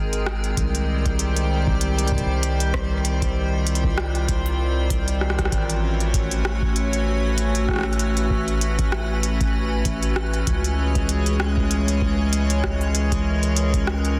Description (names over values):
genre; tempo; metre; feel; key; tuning
IDM; 97 BPM; 4/4; swing 56% on 16ths; unclear; A4 = 440 Hz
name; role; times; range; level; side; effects
icy glass pad; sustained chords; 0.0-14.2 s; Eb3 to C#5; -27 LUFS; equal; chorus, built-in reverb
round analog bass; bass; 0.0-14.2 s; Ab1 to Db2; -25 LUFS; equal; none
organic electronic drum kit; drums; 0.1-14.2 s; hi-hat, rim click; -31 LUFS; equal; soft clipping on snare, delay
electronic kick drum; drums; 0.6-13.8 s; none; -28 LUFS; equal; none
room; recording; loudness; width
moderate lush hall reverb, RT60 2.6 s; dense, heavily limited modern master; -22 LUFS; mono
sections
0.0-14.2 A section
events
none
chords
0.0 Ab; 0.6 Cm; 5.5 A6; 10.5 Dbm